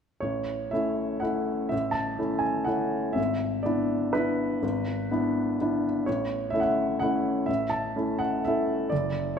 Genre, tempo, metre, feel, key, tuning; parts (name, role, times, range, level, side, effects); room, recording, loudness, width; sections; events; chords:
classical, piano waltz; 124 BPM; 3/4; uneven beats, rubato; A major; A4 = 440 Hz
clear upright piano; solo; 0.2-9.4 s; F#1 to A5; -25 LUFS; equal
moderate recital hall reverb, RT60 1.5 s; -25 LUFS; side -7 dB against mid
0.2-9.4 A section
0.2 A; 3.2 E7/G#; 6.1 A